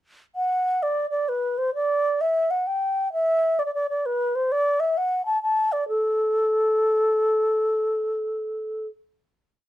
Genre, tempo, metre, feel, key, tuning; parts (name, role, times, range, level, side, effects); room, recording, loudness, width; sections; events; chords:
celtic folk, Celtic waltz; 130 BPM; 3/4; swing 64% on 8ths; A4 = 435 Hz
mellow baroque flute; solo; 0.4-8.9 s; A4 to A5; -21 LUFS; equal
little or no reverb; close, detailed microphones; -21 LUFS; side -14 dB against mid
0.4-5.9 A section; 5.9-8.7 final note